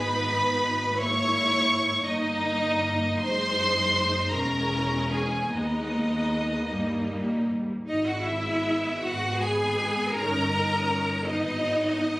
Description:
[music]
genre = classical, slow romantic movement for string orchestra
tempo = 50-59 BPM (dotted quarters)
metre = 6/8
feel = rubato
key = G# minor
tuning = A4 = 440 Hz
[part]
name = clear chamber violin section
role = melody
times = 0.0-12.2 s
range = B4 to C#6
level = -28 LUFS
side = equal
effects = none
[part]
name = rich studio violin section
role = second line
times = 0.0-12.2 s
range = D#4 to A#5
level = -30 LUFS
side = equal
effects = none
[part]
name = rich studio viola section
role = accompaniment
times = 0.0-12.2 s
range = G3 to E4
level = -31 LUFS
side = equal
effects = none
[part]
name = clear studio cello section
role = bass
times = 0.0-12.2 s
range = D#2 to A#4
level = -30 LUFS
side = equal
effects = none
[part]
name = rich studio double bass section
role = bass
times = 0.0-12.2 s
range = E1 to D#2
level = -33 LUFS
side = equal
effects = none
[sound]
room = moderate studio reverb, RT60 0.8 s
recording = recorded on a phone in the room, studio reverb, compression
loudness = -23 LUFS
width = side -19 dB against mid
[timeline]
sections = 0.0-7.9 A section; 7.9-12.2 B section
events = none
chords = 0.0 G#m; 1.0 A#m7b5/G#; 2.1 D#/G; 3.2 G#7/F#; 4.3 C#m/E; 5.5 G#m/D#; 6.7 D#; 7.9 G#m; 10.2 D#7/G; 11.3 G#m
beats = | 0.99 2.06 | 3.21 4.33 | 5.51 6.71 | 7.89 9.04 | 10.17 11.27

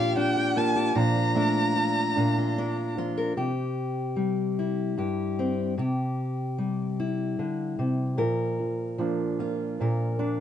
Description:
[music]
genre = acoustic folk-pop ballad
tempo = 75 BPM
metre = 3/4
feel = straight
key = Bb major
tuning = A4 = 435 Hz
[part]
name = warm violin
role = melody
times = 0.0-2.9 s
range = F5 to Bb5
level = -28 LUFS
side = equal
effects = plate reverb
[part]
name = fingerpicked steel-string acoustic guitar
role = accompaniment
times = 0.0-10.4 s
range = G2 to Bb4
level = -26 LUFS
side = left 1 dB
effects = none
[part]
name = felt-muted upright piano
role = arpeggios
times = 0.0-3.4, 8.2-10.4 s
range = F3 to G4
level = -30 LUFS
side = right 4 dB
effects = none
[sound]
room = light reverb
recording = nothing above 10.4 kHz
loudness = -24 LUFS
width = side -10 dB against mid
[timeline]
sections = 0.0-3.4 A section; 3.4-10.4 B section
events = none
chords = 0.0 Bb6; 1.0 Bbmaj7; 3.4 C; 8.2 Bb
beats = 0.16 | 0.96 1.76 2.56 | 3.37 4.17 4.97 | 5.77 6.58 7.38 | 8.18 8.98 9.79

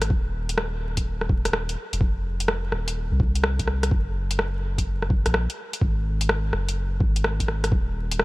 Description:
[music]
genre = future garage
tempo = 126 BPM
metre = 4/4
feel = swing 65% on 16ths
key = unclear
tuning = A4 = 441 Hz
[part]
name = soft dub sub bass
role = bass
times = 0.0-8.2 s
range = Eb1 to C2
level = -26 LUFS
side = equal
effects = tube saturation, sidechain pumping
[part]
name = garage drum kit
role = drums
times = 0.0-8.2 s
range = hi-hat, rim click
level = -28 LUFS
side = equal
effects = small room ambience
[part]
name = electronic kick drum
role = drums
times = 0.1-7.8 s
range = none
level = -23 LUFS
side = equal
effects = overdrive, small room ambience
[sound]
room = digital ambience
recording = vinyl crackle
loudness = -22 LUFS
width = side -20 dB against mid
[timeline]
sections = 0.0-8.2 A section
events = none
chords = none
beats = | 0.10 0.58 1.05 1.53 | 2.01 2.48 2.96 3.44 | 3.91 4.39 4.87 5.34 | 5.82 6.29 6.77 7.25 | 7.72 8.20

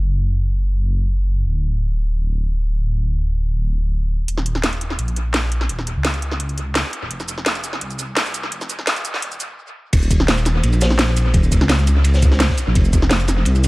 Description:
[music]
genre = liquid drum and bass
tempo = 170 BPM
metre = 4/4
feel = straight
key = Eb dorian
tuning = A4 = 440 Hz
[part]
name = dark detuned saw bass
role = bass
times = 0.0-13.7 s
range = D1 to Db2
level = -18 LUFS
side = equal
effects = none
[part]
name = garage drum kit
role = drums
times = 4.3-13.7 s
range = crash cymbal, hi-hat, shaker, snare drum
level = -21 LUFS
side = equal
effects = high-pass filter on hats, low-pass filter on hats, high-pass filter on snare, low-pass filter on snare, high-pass filter on perc, low-pass filter on perc, high-pass filter on cymbals, low-pass filter on cymbals, dub echo
[part]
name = crunchy breakbeat drum kit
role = drums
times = 9.9-13.7 s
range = ride cymbal, snare drum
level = -26 LUFS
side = equal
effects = high-pass filter on cymbals, high-pass filter on snare, high-pass filter on room, dub echo
[part]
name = electronic kick drum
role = drums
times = 9.9-13.0 s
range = none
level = -16 LUFS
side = equal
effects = none
[sound]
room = light reverb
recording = echo-heavy mix, high-pass filter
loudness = -17 LUFS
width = side -21 dB against mid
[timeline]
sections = 0.0-4.3 A section; 4.3-9.9 B section; 9.9-13.7 C section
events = build-up 4.3-9.9; filter sweep 4.3-9.9; drop 9.9-13.7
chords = none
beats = | 0.05 0.40 0.75 1.11 | 1.46 1.81 2.17 2.52 | 2.87 3.22 3.58 3.93 | 4.28 4.64 4.99 5.34 | 5.70 6.05 6.40 6.75 | 7.11 7.46 7.81 8.16 | 8.52 8.87 9.22 9.58 | 9.93 10.28 10.64 10.99 | 11.34 11.70 12.05 12.40 | 12.75 13.11 13.46

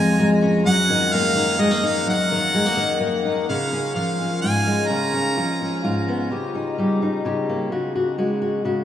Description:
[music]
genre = acoustic folk duo or small band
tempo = 128 BPM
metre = 3/4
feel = straight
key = Db major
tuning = A4 = 438 Hz
[part]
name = bright harmonica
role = melody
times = 0.0-6.1 s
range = Eb5 to Bb5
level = -23 LUFS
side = right 2 dB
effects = none
[part]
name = fingerpicked steel-string acoustic guitar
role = accompaniment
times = 0.0-8.8 s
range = F2 to G4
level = -20 LUFS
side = left 1 dB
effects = none
[sound]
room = wet huge ambient reverb, RT60 8.1 s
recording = in a vast, echoing space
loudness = -18 LUFS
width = side -10 dB against mid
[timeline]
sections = 0.0-3.5 A section; 3.5-8.8 B section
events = none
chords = 0.0 Db/F; 0.7 Ebm/Gb; 3.5 Db; 4.9 Db7; 6.3 Eb7/Db; 7.7 Ab7(no3)/Db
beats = 0.18 | 0.65 1.12 1.59 | 2.07 2.54 3.01 | 3.48 3.95 4.42 | 4.89 5.36 5.83 | 6.31 6.78 7.25 | 7.72 8.19 8.66

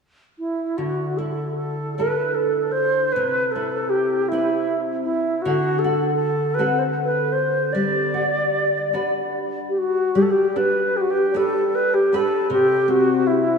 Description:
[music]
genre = celtic folk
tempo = 51 BPM (dotted quarters)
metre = 6/8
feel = uneven beats, rubato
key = D mixolydian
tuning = A4 = 440 Hz
[part]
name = bright reedy alto flute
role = melody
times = 0.4-13.6 s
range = E4 to D5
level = -20 LUFS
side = equal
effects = tape echo
[part]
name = nylon-string guitar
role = accompaniment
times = 0.8-13.6 s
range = C3 to B4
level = -23 LUFS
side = left 1 dB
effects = analog chorus
[sound]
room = wet lush hall reverb, RT60 2.3 s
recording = dreamy mix soaked in reverb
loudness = -18 LUFS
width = side -5 dB against mid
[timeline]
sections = 0.8-10.2 A section; 10.2-13.6 B section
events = none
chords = 0.0 N.C.; 0.8 Dsus2; 3.2 Cmaj7; 5.5 D7; 7.8 Gmaj7; 10.2 G; 12.5 C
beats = | 0.77 1.97 | 3.15 4.32 | 5.46 6.59 | 7.75 8.94 | 10.15 11.36 | 12.52

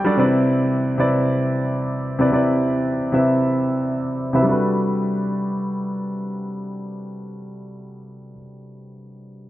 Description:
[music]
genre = amapiano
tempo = 112 BPM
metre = 4/4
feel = straight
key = G major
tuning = A4 = 440 Hz
[part]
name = clear grand piano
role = accompaniment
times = 0.0-9.5 s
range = C3 to B5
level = -19 LUFS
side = equal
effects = low-pass filter
[sound]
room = moderate plate reverb, RT60 3.1 s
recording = dark, warm production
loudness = -18 LUFS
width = side -15 dB against mid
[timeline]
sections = 0.0-4.5 A section; 4.5-8.8 B section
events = grand piano fill 0.0; filter sweep on grand piano 0.0-4.5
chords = 0.2 Cmaj7; 4.5 Gmaj7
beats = | 0.18 0.72 1.25 1.79 | 2.33 2.86 3.40 3.93 | 4.47 5.00 5.54 6.08 | 6.61 7.15 7.68 8.22

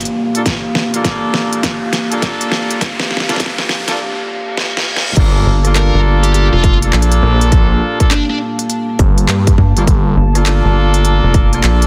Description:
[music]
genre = glitch hop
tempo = 102 BPM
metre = 4/4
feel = swing 64% on 16ths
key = G minor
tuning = A4 = 439 Hz
[part]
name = dark analog pad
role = sustained chords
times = 0.0-11.9 s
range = Bb3 to A5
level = -24 LUFS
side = equal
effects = chorus, sidechain pumping
[part]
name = dubstep drum kit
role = drums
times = 0.0-11.9 s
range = crash cymbal, handclaps, hi-hat, rim click, snare drum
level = -21 LUFS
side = equal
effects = none
[part]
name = riser and reverse cymbal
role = sound effects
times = 0.0-5.2 s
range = none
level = -27 LUFS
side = equal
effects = none
[part]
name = clear horn section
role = stabs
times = 0.3-11.9 s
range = Bb3 to A4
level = -22 LUFS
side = equal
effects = sidechain pumping, low-pass filter, dub echo
[part]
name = electronic kick drum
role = drums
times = 0.5-11.5 s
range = none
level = -15 LUFS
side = equal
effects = none
[part]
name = phased detuned saw bass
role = bass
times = 5.2-10.2 s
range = G1 to G2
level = -16 LUFS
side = equal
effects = phaser
[part]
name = rubbery square bass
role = bass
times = 5.5-11.9 s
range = F1 to G2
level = -14 LUFS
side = equal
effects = none
[part]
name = high-gain lead guitar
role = melody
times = 5.8-8.4 s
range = D4 to Bb4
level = -24 LUFS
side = equal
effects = distortion, dub echo
[sound]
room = light reverb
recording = dense, heavily limited modern master, vinyl crackle, high-pass filter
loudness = -14 LUFS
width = mono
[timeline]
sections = 0.0-5.2 A section; 5.2-11.9 B section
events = build-up 0.0-5.2; drum fill 0.0-4.0, 4.6-5.2; riser 0.0-4.0; filter sweep 0.0-5.2; reverse cymbal 4.0-5.2; drop 5.2-11.9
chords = 0.0 Gm9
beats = | 0.46 1.05 1.64 2.23 | 2.81 3.40 3.99 4.58 | 5.17 5.75 6.34 6.93 | 7.52 8.11 8.70 9.29 | 9.87 10.46 11.05 11.64

